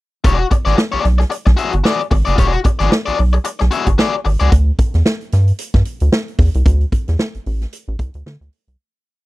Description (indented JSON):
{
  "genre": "funk",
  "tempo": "112 BPM",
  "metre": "4/4",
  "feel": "swing 56% on 16ths",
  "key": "E mixolydian",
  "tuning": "A4 = 440 Hz",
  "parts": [
    { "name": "biting overdriven guitar", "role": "accompaniment", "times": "0.2-4.5 s", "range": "F#4 to E5", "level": "-18 LUFS", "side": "left 5 dB", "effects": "none" },
    { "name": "rubbery square bass", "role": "bass", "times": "0.2-8.8 s", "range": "E1 to D3", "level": "-14 LUFS", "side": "equal", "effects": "none" },
    { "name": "swinging big-band drum kit", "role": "drums", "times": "0.2-8.8 s", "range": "hi-hat, kick drum, snare drum", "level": "-16 LUFS", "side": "equal", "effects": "none" }
  ],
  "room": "little or no reverb",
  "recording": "dry, close 1970s-style studio recording",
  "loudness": "-13 LUFS",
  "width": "side -18 dB against mid",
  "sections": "0.2-8.8 groove",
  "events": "fade-out 6.7-8.8",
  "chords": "0.2 E9; 4.5 D9sus4",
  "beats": "| 0.25 0.78 1.31 1.85 | 2.38 2.92 3.45 3.98 | 4.52 5.05 5.58 6.12 | 6.65 7.19 7.72 8.26"
}